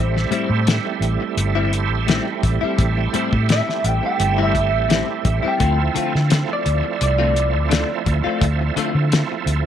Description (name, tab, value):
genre	straight-eighth soul blues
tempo	85 BPM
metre	4/4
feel	swing 54% on 16ths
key	A minor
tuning	A4 = 440 Hz
part	electric guitar through a small old amp	melody	0.0-9.1 s	C5 to G5	-23 LUFS	equal	wide subtle chorus
part	bright tonewheel organ	accompaniment	0.0-9.7 s	F3 to E4	-24 LUFS	right 11 dB	slow rotary speaker, chorus vibrato
part	vintage muted fingered electric bass	bass	0.0-9.6 s	G1 to D3	-20 LUFS	equal	none
part	direct-recorded clean electric guitar	stabs	0.2-9.4 s	A2 to F4	-25 LUFS	left 9 dB	lush chorus
part	cloth-damped thuddy drum kit	drums	0.2-9.6 s	hi-hat, kick drum, snare drum	-21 LUFS	left 3 dB	none
room	light reverb, small room ambience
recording	1960s-style stereo with parts hard left and right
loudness	-17 LUFS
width	side -9 dB against mid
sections	0.0-9.7 A section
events	none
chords	0.0 Am7; 5.6 Dm7